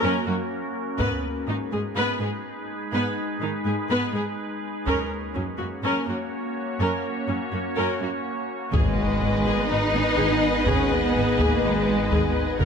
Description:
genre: cinematic, hybrid orchestral and electronic film score.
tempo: 124 BPM.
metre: 4/4.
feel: straight.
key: G# minor.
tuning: A4 = 438 Hz.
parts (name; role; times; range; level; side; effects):
rich studio viola section; accompaniment; 0.0-12.7 s; D#3 to B4; -27 LUFS; left 1 dB; none.
evolving wavetable pad; sustained chords; 0.0-12.7 s; G#3 to C#5; -29 LUFS; equal; chorus, built-in reverb.
rich symphonic cello section; bass; 0.0-12.7 s; F#2 to D#4; -27 LUFS; right 1 dB; none.
taiko ensemble; drums; 1.0-1.9, 4.9-5.8, 8.7-12.7 s; none; -28 LUFS; left 1 dB; none.
rich symphonic violin section; second line; 8.7-12.7 s; B4 to F#5; -29 LUFS; left 3 dB; none.
dark French horn section; sustained chords; 8.7-12.7 s; G#4 to C#5; -31 LUFS; left 8 dB; none.
warm trombone section; sustained chords; 8.7-12.7 s; C#3 to B3; -32 LUFS; right 6 dB; none.
clear symphonic double bass section; bass; 8.7-12.7 s; F#1 to G#1; -29 LUFS; right 3 dB; none.
phased detuned saw bass; bass; 8.7-12.7 s; F#1 to G#1; -30 LUFS; left 1 dB; phaser.
impact; sound effects; 8.7-10.7 s; none; -30 LUFS; left 1 dB; none.
room: light reverb.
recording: close, detailed microphones.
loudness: -22 LUFS.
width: side -6 dB against mid.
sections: 0.0-8.7 A section; 8.7-12.7 B section.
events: build-up 0.0-8.7; impact 8.7-10.7.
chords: 0.0 F#; 1.0 G#m; 4.9 F#; 8.7 G#m.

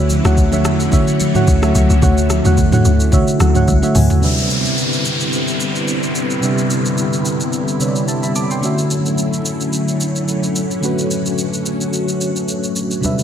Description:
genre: amapiano.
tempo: 109 BPM.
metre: 4/4.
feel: swing 55% on 16ths.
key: unclear.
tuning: A4 = 440 Hz.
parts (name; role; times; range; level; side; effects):
mellow FM electric piano; accompaniment; 0.0-13.2 s; C3 to D6; -19 LUFS; right 2 dB; chorus.
string machine, full ensemble; sustained chords; 0.0-13.2 s; D3 to F#4; -20 LUFS; left 1 dB; ensemble chorus, sidechain pumping.
deep log drum bass; bass; 0.0-4.1 s; C#2 to E2; -15 LUFS; equal; none.
smooth R&B drum kit; drums; 0.1-13.2 s; hi-hat, kick drum, rim click, shaker, toms; -20 LUFS; equal; overdrive.
congas; percussion; 0.1-4.1, 13.0-13.2 s; none; -24 LUFS; left 2 dB; none.
downlifter; sound effects; 4.2-8.6 s; none; -23 LUFS; equal; none.
room: moderate plate reverb, RT60 1.5 s, digital ambience.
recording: dreamy mix soaked in reverb.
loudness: -14 LUFS.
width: side -9 dB against mid.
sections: 0.0-4.2 A section; 4.2-13.2 B section.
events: drop 0.0-4.2; FM electric piano fill 3.1-4.2; drum fill 3.7-4.2.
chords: 0.0 Dmaj9; 4.2 Cmaj9; 8.6 Dmaj9.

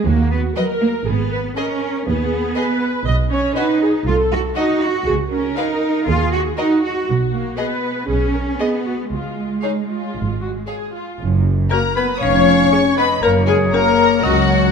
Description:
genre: cinematic, playful, whimsical film cue.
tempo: 119 BPM.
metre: 4/4.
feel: straight.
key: F# major from 3.1 s.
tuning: A4 = 442 Hz.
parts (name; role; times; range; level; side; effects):
rich studio viola section; accompaniment; 0.0-13.8 s; C#4 to D#5; -24 LUFS; equal; none.
rich studio cello section; bass; 0.0-14.7 s; C#2 to Gb4; -21 LUFS; right 3 dB; none.
rich studio double bass section; bass; 0.1-14.7 s; E#1 to D#2; -20 LUFS; right 3 dB; none.
clear studio violin section; melody; 0.6-14.7 s; E#5 to D#6; -23 LUFS; left 6 dB; none.
rich studio violin section; second line; 0.6-14.7 s; F#4 to E#5; -24 LUFS; left 4 dB; none.
folk marimba with hard mallets; melody; 11.7-14.7 s; F#4 to C#5; -23 LUFS; left 8 dB; none.
clear oboe; second line; 11.7-14.7 s; F#4 to C#5; -24 LUFS; equal; none.
large flute ensemble; second line; 11.7-14.7 s; F#4 to C#5; -22 LUFS; left 4 dB; none.
mellow French horn section; sustained chords; 11.7-14.7 s; F#3 to C#4; -18 LUFS; left 6 dB; none.
clear clarinet; second line; 12.2-14.7 s; C#5 to E#5; -23 LUFS; left 2 dB; none.
room: moderate scoring stage reverb, RT60 2.0 s.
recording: none.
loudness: -15 LUFS.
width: side -6 dB against mid.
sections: 0.0-11.2 A section; 11.2-14.7 B section.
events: none.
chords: 0.0 B/D# (rootless); 1.1 G#m; 3.1 G#m/B (rootless); 4.1 Cdim7; 5.1 N.C.; 6.1 D#m; 7.1 G#m7/B; 9.1 C#; 11.2 F#5; 12.2 C#/E#; 13.2 F#.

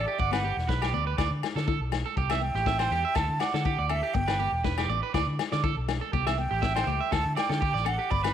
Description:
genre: highlife guitar band.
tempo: 121 BPM.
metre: 4/4.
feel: swing 53% on 16ths.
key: D mixolydian.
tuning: A4 = 441 Hz.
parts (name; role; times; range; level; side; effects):
breathy mellow silver concert flute; melody; 0.0-8.3 s; D5 to B5; -30 LUFS; right 1 dB; none.
picked steel-string acoustic guitar; accompaniment; 0.0-8.3 s; A3 to E4; -39 LUFS; left 12 dB; none.
electric guitar at the edge of break-up; arpeggios; 0.0-8.3 s; G4 to E5; -31 LUFS; right 10 dB; spring reverb, slapback echo.
fingered electric bass; bass; 0.0-8.3 s; E1 to D3; -30 LUFS; equal; none.
vintage drum kit; drums; 0.2-8.3 s; kick drum, snare drum; -32 LUFS; left 3 dB; none.
agogo bells; percussion; 0.3-8.3 s; none; -36 LUFS; left 15 dB; none.
room: light reverb.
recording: 1960s-style stereo with parts hard left and right.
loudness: -25 LUFS.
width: side -9 dB against mid.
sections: 0.0-8.3 A section.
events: flute solo 0.0-8.3.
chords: 0.2 G; 1.2 D5; 2.2 C; 3.2 Dsus4; 4.2 G; 5.1 D5; 6.1 C; 7.1 Dsus4.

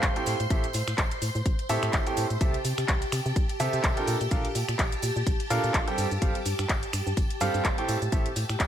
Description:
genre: piano house.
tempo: 126 BPM.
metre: 4/4.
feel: swing 56% on 16ths.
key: unclear.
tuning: A4 = 438 Hz.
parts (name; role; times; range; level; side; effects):
string machine, violins; sustained chords; 0.0-8.7 s; G4 to C6; -34 LUFS; equal; ensemble chorus, sidechain pumping.
clear grand piano; riff; 0.0-8.3 s; A2 to G5; -30 LUFS; right 2 dB; sidechain pumping, ping-pong delay.
organ-like FM bass; bass; 0.0-8.7 s; G1 to C3; -30 LUFS; equal; sidechain pumping.
electronic kick drum; drums; 0.0-8.7 s; none; -27 LUFS; equal; none.
house drum kit; drums; 0.0-8.7 s; cabasa, finger snaps, handclaps, hi-hat; -31 LUFS; left 1 dB; none.
tambourine; percussion; 0.0-8.7 s; none; -45 LUFS; right 6 dB; none.
room: digital ambience.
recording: none.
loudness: -24 LUFS.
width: side -10 dB against mid.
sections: 0.0-8.7 A section.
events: none.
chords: 0.3 Am7; 2.4 C6; 4.1 Bbmaj7; 6.0 G9sus4; 7.9 Am7.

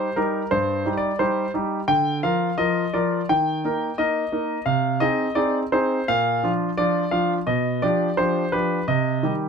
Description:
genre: classical-period piano sonatina.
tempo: 86 BPM.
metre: 4/4.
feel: rubato.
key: unclear.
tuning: A4 = 440 Hz.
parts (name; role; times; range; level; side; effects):
clear concert grand piano; solo; 0.0-9.5 s; G2 to G5; -20 LUFS; equal; none.
room: light reverb.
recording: close, detailed microphones.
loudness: -20 LUFS.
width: side -6 dB against mid.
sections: 0.0-9.5 A section.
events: none.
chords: 0.0 Cm; 1.9 Bb/D; 3.3 Eb; 4.7 Ab/C; 6.1 Bb; 7.5 G7/B; 8.9 Cm.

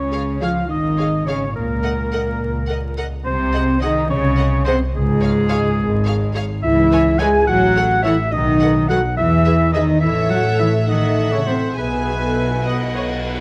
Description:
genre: cinematic.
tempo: 70 BPM (dotted quarters).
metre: 6/8.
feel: straight.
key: Db major, E major from 6.6 s.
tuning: A4 = 439 Hz.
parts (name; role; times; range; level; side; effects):
mellow hollow concert flute; second line; 0.0-13.2 s; Ab4 to G#5; -30 LUFS; equal; none.
warm clarinet; second line; 0.0-13.2 s; Ab4 to G#5; -30 LUFS; equal; none.
warm oboe; second line; 0.0-13.2 s; Ab4 to G#5; -28 LUFS; equal; none.
dark French horn section; sustained chords; 0.0-13.2 s; Ab3 to G#4; -24 LUFS; equal; none.
warm studio cello section; bass; 0.0-13.2 s; Ab2 to G#3; -25 LUFS; equal; none.
warm studio double bass section; bass; 0.0-13.3 s; Ab1 to E2; -24 LUFS; equal; none.
clear studio violin section; melody; 0.1-13.3 s; E5 to G#5; -33 LUFS; equal; none.
warm studio violin section; second line; 0.1-13.3 s; B4 to E5; -34 LUFS; equal; none.
warm studio viola section; accompaniment; 0.1-13.4 s; Ab4 to D#5; -30 LUFS; equal; none.
room: light reverb.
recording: close, detailed microphones, vinyl crackle.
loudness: -18 LUFS.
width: mono.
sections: 0.0-13.4 A section.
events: none.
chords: 0.0 Db; 1.6 Eb7(no3)/Db (rootless); 3.3 Ab/C; 5.0 Db5; 6.6 C#m7; 7.5 F#m7/A; 8.3 B7; 9.2 E; 10.0 A; 10.9 F#m7b5/A; 11.8 E/B; 12.7 B.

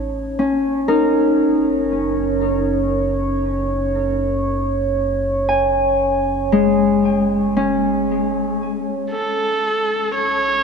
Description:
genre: ambient.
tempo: 58 BPM.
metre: 4/4.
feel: straight.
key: unclear.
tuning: A4 = 436 Hz.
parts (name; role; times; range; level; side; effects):
Celtic harp; arpeggios; 0.0-10.5 s; G#3 to G#5; -19 LUFS; left 2 dB; ping-pong delay.
deep rumbling drone; bass; 0.0-10.6 s; F#1 to A1; -28 LUFS; equal; built-in reverb, phaser.
analog drone; drone; 0.0-10.6 s; C#4 to C#5; -21 LUFS; right 3 dB; chorus.
dark electric violin; melody; 9.1-10.6 s; A4 to C#5; -17 LUFS; right 2 dB; none.
room: wet huge ambient reverb, RT60 8.0 s.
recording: none.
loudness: -16 LUFS.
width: side -5 dB against mid.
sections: 0.0-9.1 A section; 9.1-10.6 B section.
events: fade-in on synth drone 0.0-9.1; fade-out on synth drone 0.0-9.1.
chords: 0.0 A; 0.9 F#; 9.1 A.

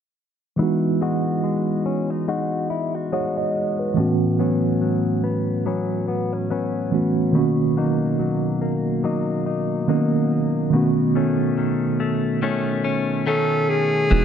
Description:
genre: contemporary R&B.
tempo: 71 BPM.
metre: 4/4.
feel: swing 58% on 16ths.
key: B major.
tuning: A4 = 435 Hz.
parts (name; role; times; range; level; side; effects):
tine electric piano; accompaniment; 0.6-14.2 s; D#3 to D#5; -21 LUFS; right 3 dB; medium stereo tremolo.
direct-recorded clean electric guitar; arpeggios; 0.6-14.2 s; A2 to F#4; -24 LUFS; left 5 dB; ping-pong delay.
warm alto saxophone; melody; 13.3-14.2 s; G#4 to A4; -20 LUFS; right 1 dB; none.
saturated sub bass; bass; 14.1-14.2 s; E1; -17 LUFS; equal; none.
room: light reverb, digital ambience.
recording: low-pass filter.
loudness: -19 LUFS.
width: side -8 dB against mid.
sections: 0.6-14.1 A section.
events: filter sweep 0.6-14.1.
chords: 0.6 Emaj9; 4.0 A69; 7.3 Bmaj7; 10.7 B9.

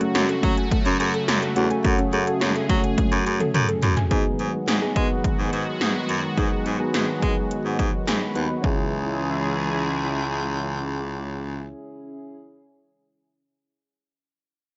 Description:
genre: synth-pop.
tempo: 106 BPM.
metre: 4/4.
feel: straight.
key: C# minor.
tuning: A4 = 440 Hz.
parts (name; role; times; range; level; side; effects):
soft electric-piano-like synth keys; accompaniment; 0.0-12.4 s; A3 to B5; -30 LUFS; equal; chorus, phaser.
sweeping resonant pad; sustained chords; 0.0-11.7 s; C#3 to G#4; -30 LUFS; equal; chorus.
soft round pluck; arpeggios; 0.0-4.0 s; A3 to G#5; -32 LUFS; equal; chorus, slapback echo.
80s electronic pad drums; drums; 0.0-8.8 s; hi-hat, kick drum, snare drum, toms; -26 LUFS; equal; gated reverb on snare and toms, overdrive, gated reverb.
bright baritone saxophone; bass; 0.1-11.7 s; C#2 to G#3; -28 LUFS; equal; none.
room: light reverb.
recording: nothing above 7.7 kHz.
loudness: -23 LUFS.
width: mono.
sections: 0.0-4.1 A section; 4.1-8.6 B section; 8.6-10.9 C section.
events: drum fill 3.0-4.1; synth keys fill 7.8-8.6.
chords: 0.0 F#madd9; 4.1 G#m7; 8.6 C#m.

